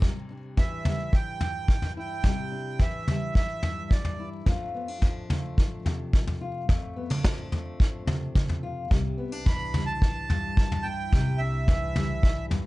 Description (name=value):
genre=indie folk with a building arrangement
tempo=108 BPM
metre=4/4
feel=straight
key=C major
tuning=A4 = 440 Hz
part: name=fingerpicked steel-string acoustic guitar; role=accompaniment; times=0.0-12.7 s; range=F2 to F4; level=-34 LUFS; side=left 3 dB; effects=none
part: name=vintage brush drum kit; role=drums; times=0.0-12.6 s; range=kick drum, snare drum, toms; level=-24 LUFS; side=equal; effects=none
part: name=accordion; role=melody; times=0.6-4.3, 9.5-12.5 s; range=D5 to B5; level=-33 LUFS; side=right 4 dB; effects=slapback echo
part: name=upright bass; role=bass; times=8.9-12.7 s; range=C2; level=-32 LUFS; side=equal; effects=none
room=small room reverb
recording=dark, warm production, nothing above 10.7 kHz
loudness=-24 LUFS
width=side -19 dB against mid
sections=0.0-12.7 A section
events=none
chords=0.0 Cadd9; 4.5 F6; 8.9 Cadd9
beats=| 0.02 0.57 1.13 1.69 | 2.24 2.80 3.35 3.91 | 4.46 5.02 5.58 6.13 | 6.69 7.24 7.80 8.35 | 8.91 9.46 10.02 10.57 | 11.13 11.68 12.23